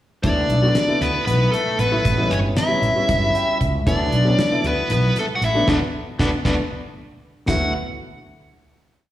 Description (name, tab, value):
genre	electric jazz fusion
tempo	232 BPM (eighths)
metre	7/8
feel	straight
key	D major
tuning	A4 = 441 Hz
part	dark smooth lead guitar	melody	0.2-7.7 s	A4 to F#5	-23 LUFS	equal	overdrive, slapback echo, tape echo
part	overdriven semi-hollow guitar	second line	0.2-7.7 s	A3 to F#4	-25 LUFS	left 2 dB	slapback echo
part	warm concert grand piano	accompaniment	0.2-7.7 s	F#3 to G5	-25 LUFS	left 1 dB	slapback echo
part	fretless electric bass	bass	0.2-7.7 s	G1 to D2	-21 LUFS	right 1 dB	none
part	damped 70s drum kit	drums	0.2-7.6 s	hi-hat, kick drum, snare drum, splash cymbal	-24 LUFS	equal	slapback echo
room	light reverb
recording	live gig heard through the venue's PA, recital hall reverb, small room ambience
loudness	-17 LUFS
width	side -13 dB against mid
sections	0.2-7.5 A section; 7.5-9.1 final chord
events	grand piano fill 3.1-3.9; band accent 5.7-7.5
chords	0.2 D69; 2.1 A7; 3.9 D69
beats	| 0.24 0.50 0.76 1.02 1.28 1.53 1.79 | 2.05 2.31 2.57 2.83 3.09 3.35 3.61 | 3.87 4.13 4.38 4.64 4.90 5.16 5.42 | 5.67 5.93 6.19 6.45 6.71 6.96 7.22 | 7.48